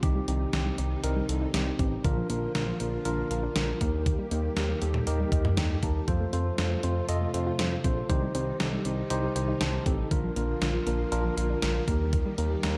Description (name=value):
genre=synth-pop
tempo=119 BPM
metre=4/4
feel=straight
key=unclear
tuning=A4 = 441 Hz
part: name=mellow tine electric piano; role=accompaniment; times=0.0-12.8 s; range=C4 to A5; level=-35 LUFS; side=equal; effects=none
part: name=string machine, violas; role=sustained chords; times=0.0-12.8 s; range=C3 to G4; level=-39 LUFS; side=equal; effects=ensemble chorus
part: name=soft round pluck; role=arpeggios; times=0.0-12.7 s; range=D3 to F4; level=-39 LUFS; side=equal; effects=chorus, tape echo
part: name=smooth gliding synth bass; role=bass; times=0.0-12.8 s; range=A1 to F2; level=-33 LUFS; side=equal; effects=none
part: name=clean 12-bit digital drum machine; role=drums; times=0.0-12.8 s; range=hi-hat, kick drum, snare drum, toms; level=-32 LUFS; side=equal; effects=gated reverb
room=light reverb, digital ambience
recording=none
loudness=-28 LUFS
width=mono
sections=0.0-12.8 A section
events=tine electric piano fill 5.1-6.1, 9.4-10.1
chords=0.0 Cm; 2.0 Bb; 3.8 Eb; 6.1 F; 8.1 Cm; 10.1 Bb; 11.9 Eb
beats=| 0.03 0.53 1.04 1.54 | 2.04 2.55 3.05 3.56 | 4.06 4.57 5.07 5.57 | 6.08 6.58 7.09 7.59 | 8.10 8.60 9.10 9.61 | 10.11 10.62 11.12 11.62 | 12.13 12.63